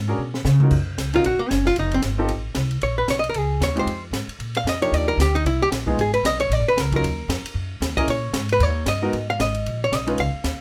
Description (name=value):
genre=jazz, small-group swing and bop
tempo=228 BPM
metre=4/4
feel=swing 58% on 8ths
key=Eb minor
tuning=A4 = 440 Hz
part: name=upright bass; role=bass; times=0.0-10.6 s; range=F1 to C#3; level=-26 LUFS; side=equal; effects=none
part: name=clear baby grand piano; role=accompaniment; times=0.1-10.2 s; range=F3 to Cb5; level=-28 LUFS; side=equal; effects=none
part: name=open jazz drum kit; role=drums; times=0.3-10.5 s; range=crash cymbal, hi-hat, kick drum, ride cymbal, snare drum, toms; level=-31 LUFS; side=equal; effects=none
part: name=archtop guitar, miked and amplified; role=melody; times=1.2-10.6 s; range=Bb3 to F5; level=-24 LUFS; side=equal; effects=none
room=light reverb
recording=none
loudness=-22 LUFS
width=mono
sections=0.7-9.1 A section; 9.1-10.6 A section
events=drum fill 0.2-0.7; hollow-body jazz guitar solo 0.7-10.6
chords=0.0 Bb7alt; 0.7 Ebm7 (rootless); 1.8 F; 2.8 Bbm7; 3.9 Fm; 4.4 Bb; 4.9 Ebmaj9; 5.5 Bb9sus4; 6.0 Abm; 6.5 Bbm7; 7.0 Ebm; 8.1 Absus4; 8.6 Eb7; 9.1 Abm